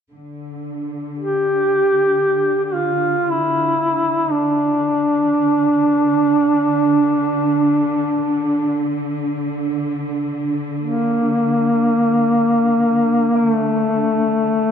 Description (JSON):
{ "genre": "caucasian folk, Caucasian lament", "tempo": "free time", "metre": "none", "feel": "none", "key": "D minor", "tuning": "A4 = 440 Hz", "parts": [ { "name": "dark studio cello section", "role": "drone", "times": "0.1-14.7 s", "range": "D3", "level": "-24 LUFS", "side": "right 1 dB", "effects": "none" }, { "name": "mellow duduk", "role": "melody", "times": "1.2-14.7 s", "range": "A3 to G4", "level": "-16 LUFS", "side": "equal", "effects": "none" } ], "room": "moderate church reverb, RT60 2.7 s", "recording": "dark, warm production", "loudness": "-15 LUFS", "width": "side -8 dB against mid", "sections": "0.1-14.7 A section", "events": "none", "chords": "none", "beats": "free time" }